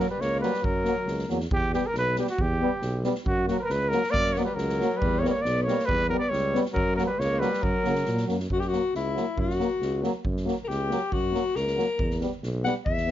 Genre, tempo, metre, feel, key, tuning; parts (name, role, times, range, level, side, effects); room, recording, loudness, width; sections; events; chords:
balkan folk, Balkan brass band; 138 BPM; 2/4; straight; F# phrygian dominant; A4 = 440 Hz
mellow trumpet; melody; 0.0-8.3 s; F#4 to D5; -27 LUFS; right 1 dB
breathy alto saxophone; second line; 0.0-1.3, 4.1-13.1 s; F#3 to F#5; -29 LUFS; left 4 dB
clear euphonium; accompaniment; 0.0-13.1 s; F#3 to G3; -32 LUFS; right 8 dB
mellow French horn; accompaniment; 0.0-13.1 s; A#3 to B3; -30 LUFS; left 5 dB
street-band drum kit; percussion; 0.0-13.1 s; kick drum, snare drum; -33 LUFS; right 1 dB
warm tuba; bass; 0.2-13.1 s; B1 to C#3; -30 LUFS; right 1 dB
light reverb; dark, warm production, nothing above 7.5 kHz; -24 LUFS; side -12 dB against mid
0.0-1.5 A section; 1.5-8.5 A section; 8.5-13.1 B section
alto saxophone solo 8.5-13.1
0.0 F#; 1.5 Em; 3.3 F#; 5.0 Em; 6.8 F#; 12.0 Em